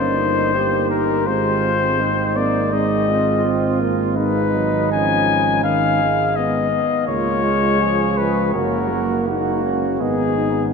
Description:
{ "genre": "classical, brass quintet", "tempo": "83 BPM", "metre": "4/4", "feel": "rubato", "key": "unclear", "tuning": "A4 = 440 Hz", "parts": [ { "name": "warm trumpet", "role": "melody", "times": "0.0-10.7 s", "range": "Ab4 to Ab5", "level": "-20 LUFS", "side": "left 6 dB", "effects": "none" }, { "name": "mellow flugelhorn", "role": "second line", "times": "0.0-10.7 s", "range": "Eb4 to Ab4", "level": "-25 LUFS", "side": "right 5 dB", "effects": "none" }, { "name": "clear trombone", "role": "accompaniment", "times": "0.0-10.7 s", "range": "Eb3 to C4", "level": "-25 LUFS", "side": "right 4 dB", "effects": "none" }, { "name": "mellow French horn", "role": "accompaniment", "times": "0.0-10.7 s", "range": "Ab3 to Eb4", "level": "-24 LUFS", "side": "left 3 dB", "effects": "none" }, { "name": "mellow tuba", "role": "bass", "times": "0.0-10.7 s", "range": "Gb1 to Db2", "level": "-24 LUFS", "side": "right 4 dB", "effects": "none" } ], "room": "wet cathedral reverb, RT60 5.2 s", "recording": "dark, warm production", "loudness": "-16 LUFS", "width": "side -5 dB against mid", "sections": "0.0-10.7 A section", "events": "none", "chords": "0.0 Eb7/G; 1.3 Ab; 4.2 Abm; 7.1 Db; 8.5 Gb; 10.0 Abm", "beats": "0.55 | 1.27 1.99 2.72 3.44 | 4.16 4.91 5.64 6.36 | 7.08 7.81 8.54 9.27 | 10.00 10.73" }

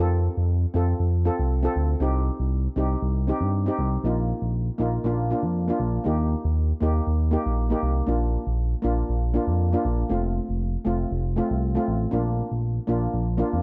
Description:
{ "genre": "calypso", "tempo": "119 BPM", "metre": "4/4", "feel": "swing 54% on 16ths", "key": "unclear", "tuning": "A4 = 440 Hz", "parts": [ { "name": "steel pan", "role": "accompaniment", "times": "0.0-13.6 s", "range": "A3 to A4", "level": "-29 LUFS", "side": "equal", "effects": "none" }, { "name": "smooth gliding synth bass", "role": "bass", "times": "0.0-13.6 s", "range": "F1 to G2", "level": "-26 LUFS", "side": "equal", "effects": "none" } ], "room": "studio reverb", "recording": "dry, close 1970s-style studio recording", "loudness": "-24 LUFS", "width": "mono", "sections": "0.0-13.6 A section", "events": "none", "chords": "0.0 F; 2.0 Cm; 4.0 Bbsus4; 5.0 Bb; 6.1 Eb; 8.1 Bb; 10.1 F; 12.1 Bb", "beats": "| 0.00 0.50 1.01 1.51 | 2.02 2.52 3.03 3.53 | 4.04 4.54 5.05 5.55 | 6.06 6.56 7.07 7.57 | 8.08 8.58 9.09 9.60 | 10.10 10.61 11.11 11.62 | 12.12 12.63 13.14" }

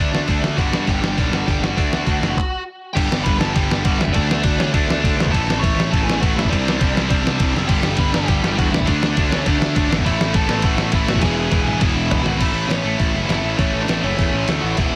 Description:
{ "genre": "punk rock", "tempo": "203 BPM", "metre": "4/4", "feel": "straight", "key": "unclear", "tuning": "A4 = 440 Hz", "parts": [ { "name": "biting lead guitar", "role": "melody", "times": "0.0-15.0 s", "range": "C4 to C#6", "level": "-28 LUFS", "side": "equal", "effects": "overdrive, tape echo" }, { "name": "cranked stack guitar", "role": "riff", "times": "0.0-15.0 s", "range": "E2 to D4", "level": "-27 LUFS", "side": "equal", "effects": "overdrive" }, { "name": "tight distorted guitar", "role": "riff", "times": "0.0-15.0 s", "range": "E2 to D4", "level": "-28 LUFS", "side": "equal", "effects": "distortion" }, { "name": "fuzz picked electric bass", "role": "bass", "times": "0.0-14.9 s", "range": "E1 to G2", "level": "-25 LUFS", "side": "equal", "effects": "overdrive" }, { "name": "lo-fi sampler-style drum kit", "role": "drums", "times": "0.1-14.8 s", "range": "crash cymbal, handclaps, hi-hat, kick drum, ride cymbal, snare drum, toms", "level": "-22 LUFS", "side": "equal", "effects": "none" }, { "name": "heavy high-gain guitar", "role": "riff", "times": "7.7-15.0 s", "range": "E2 to D4", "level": "-32 LUFS", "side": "equal", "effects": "none" } ], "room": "little or no reverb", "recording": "dense, heavily limited modern master", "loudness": "-18 LUFS", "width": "mono", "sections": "0.0-3.0 A section; 3.0-12.4 B section; 12.4-15.0 C section", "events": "stop 2.4-3.0; drum fill 7.5, 11.2-12.4; half time 12.4-15.0", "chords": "0.0 D5; 0.6 G5; 1.8 D; 3.0 G; 4.0 D5; 5.3 A; 6.5 C5; 7.7 G; 8.7 D5; 10.0 A5; 11.2 E; 12.4 A", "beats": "0.28 | 0.57 0.87 1.17 1.47 | 1.77 2.06 2.36 2.66 | 2.96 3.25 3.55 3.85 | 4.14 4.44 4.74 5.03 | 5.33 5.62 5.92 6.21 | 6.51 6.80 7.10 7.39 | 7.69 7.98 8.28 8.57 | 8.87 9.16 9.46 9.75 | 10.04 10.34 10.63 10.93 | 11.22 11.52 11.81 12.11 | 12.40 12.70 12.99 13.29 | 13.59 13.88 14.18 14.48 | 14.78" }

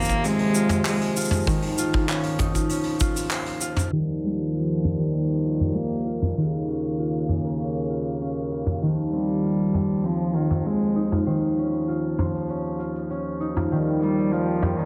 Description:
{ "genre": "folktronica", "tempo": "98 BPM", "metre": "4/4", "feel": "straight", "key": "Eb mixolydian", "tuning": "A4 = 440 Hz", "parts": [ { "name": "rich cello", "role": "melody", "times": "0.0-14.9 s", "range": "Eb3 to Bb3", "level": "-27 LUFS", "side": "equal", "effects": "delay" }, { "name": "pedal harmonium", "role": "sustained chords", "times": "0.0-14.9 s", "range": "Eb2 to Bb3", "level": "-32 LUFS", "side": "equal", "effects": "low-pass filter" }, { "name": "concert harp", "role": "arpeggios", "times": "0.0-14.9 s", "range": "Eb3 to C5", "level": "-29 LUFS", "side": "equal", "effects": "low-pass filter, delay" }, { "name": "soft brush drum kit", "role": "drums", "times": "0.0-14.9 s", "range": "handclaps, hi-hat, shaker, toms", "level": "-30 LUFS", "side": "equal", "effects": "none" }, { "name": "kick drum", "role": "drums", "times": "0.1-3.1 s", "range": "none", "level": "-29 LUFS", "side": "equal", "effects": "none" } ], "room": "light reverb, small room ambience", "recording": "low-pass filter", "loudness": "-24 LUFS", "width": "mono", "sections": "0.0-3.9 A section; 3.9-14.9 B section", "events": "kick drops out 3.3-3.9; filter sweep on harp 3.9-14.9; filter sweep on harmonium 3.9-14.9; filter sweep 3.9-14.9", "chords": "0.0 Ab6/Eb; 1.5 Dbmaj7/Eb; 3.9 Ebadd9; 6.4 Bbm7/Eb; 8.8 Eb69; 11.3 Dbmaj7/Eb; 13.7 Ebadd9", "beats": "0.25 0.86 | 1.48 2.09 2.70 3.31 | 3.92 4.54 5.15 5.76 | 6.37 6.99 7.60 8.21 | 8.82 9.43 10.05 10.66 | 11.27 11.88 12.49 13.11 | 13.72 14.33" }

